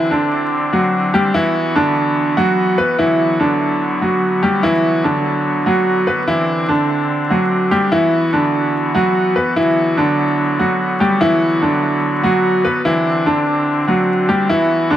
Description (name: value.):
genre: hip hop.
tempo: 146 BPM.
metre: 4/4.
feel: half-time.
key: B phrygian.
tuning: A4 = 441 Hz.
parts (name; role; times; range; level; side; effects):
bright upright piano; melody; 0.0-15.0 s; D3 to B4; -14 LUFS; equal; low-pass filter, tape echo.
pipe organ, soft reed; sustained chords; 0.0-15.0 s; D3 to F#4; -20 LUFS; left 1 dB; none.
room: moderate lush hall reverb, RT60 2.3 s.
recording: vinyl crackle.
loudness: -13 LUFS.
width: side -11 dB against mid.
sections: 0.0-3.0 A section; 3.0-9.6 B section; 9.6-15.0 C section.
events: none.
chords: 0.0 Csus2; 1.3 Esus2; 3.0 Bm; 6.3 Csus2; 7.9 Esus2; 9.6 Bm; 12.8 Csus2.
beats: 0.11 0.52 0.93 | 1.34 1.75 2.17 2.58 | 2.99 3.40 3.81 4.22 | 4.63 5.04 5.45 5.86 | 6.28 6.69 7.10 7.51 | 7.92 8.33 8.74 9.15 | 9.56 9.97 10.38 10.79 | 11.21 11.62 12.03 12.44 | 12.85 13.26 13.67 14.08 | 14.49 14.90.